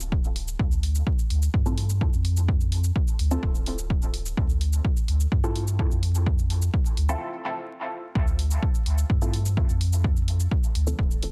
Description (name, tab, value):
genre	dub techno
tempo	127 BPM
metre	4/4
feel	straight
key	D minor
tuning	A4 = 440 Hz
part	filtered dub chord stab	stabs	0.0-11.3 s	C4 to A4	-37 LUFS	equal	phaser, cassette tape, sidechain pumping, dub echo
part	soft dub sub bass	bass	0.0-11.3 s	D1 to G2	-27 LUFS	equal	sidechain pumping
part	electronic shaker and hi-hat	drums	0.0-11.3 s	none	-39 LUFS	equal	none
part	electronic kick drum	drums	0.1-11.1 s	none	-27 LUFS	equal	none
room	digital ambience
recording	dense, heavily limited modern master, vinyl crackle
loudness	-25 LUFS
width	mono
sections	0.0-8.2 A section; 8.2-11.3 A section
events	filter sweep on synth stab 0.0-8.2, 8.2-11.3; break 7.2-8.2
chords	0.0 Dm7